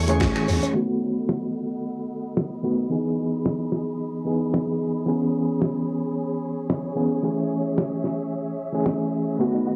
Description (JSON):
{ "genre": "nu-disco, nu disco", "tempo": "111 BPM", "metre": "4/4", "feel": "swing 55% on 16ths", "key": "unclear", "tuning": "A4 = 441 Hz", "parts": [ { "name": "warm studio string section", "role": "sustained chords", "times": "0.0-9.8 s", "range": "A3 to C#6", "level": "-36 LUFS", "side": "equal", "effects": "sidechain pumping" }, { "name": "fat analog bass", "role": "bass", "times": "0.0-0.6 s", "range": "E2 to A2", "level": "-26 LUFS", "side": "equal", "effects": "sidechain pumping" }, { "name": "overdriven reed electric piano", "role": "accompaniment", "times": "0.1-9.8 s", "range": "D#3 to G#4", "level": "-26 LUFS", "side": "equal", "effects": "fast tremolo, sidechain pumping" }, { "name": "soft round pluck", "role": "arpeggios", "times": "0.1-0.7, 9.4-9.7 s", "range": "B3 to C#5", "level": "-34 LUFS", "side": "equal", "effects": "chorus, sidechain pumping, analog delay" }, { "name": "damped 70s drum kit", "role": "drums", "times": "0.1-9.0 s", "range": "finger snaps, hi-hat, snare drum", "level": "-30 LUFS", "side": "equal", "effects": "small room ambience" } ], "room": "moderate lush hall reverb, RT60 2.4 s", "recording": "dry, gritty hardware recording, transformer saturation, low-pass filter, small room ambience", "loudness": "-25 LUFS", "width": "mono", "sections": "0.8-9.8 A section", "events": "band accent 0.2; filter sweep 0.8-9.8", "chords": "0.0 Amaj7; 0.8 B7; 2.9 Emaj7; 5.1 C#m7; 7.2 Amaj7" }